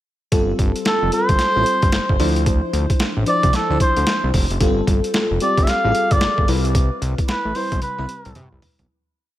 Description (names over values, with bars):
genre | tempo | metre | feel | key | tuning
R&B, new jack swing | 112 BPM | 4/4 | swing 62% on 16ths | unclear | A4 = 439 Hz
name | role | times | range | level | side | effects
FM electric piano with soft pad layer | accompaniment | 0.3-8.9 s | F3 to C5 | -23 LUFS | left 1 dB | chorus
fat analog bass | bass | 0.3-8.9 s | F1 to C3 | -21 LUFS | equal | none
boom bap sampler-style drum kit | drums | 0.3-8.9 s | hi-hat, kick drum, snare drum, toms | -20 LUFS | equal | overdrive
trumpet with cup mute | melody | 0.9-8.6 s | A4 to F5 | -21 LUFS | equal | digital delay
room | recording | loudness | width
light reverb | none | -16 LUFS | side -14 dB against mid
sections
0.3-8.9 verse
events
fade-out 6.7-8.9; drum fill 7.8-8.9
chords
0.3 G9sus4; 2.2 Dm9; 4.6 G9sus4; 6.5 Cmaj7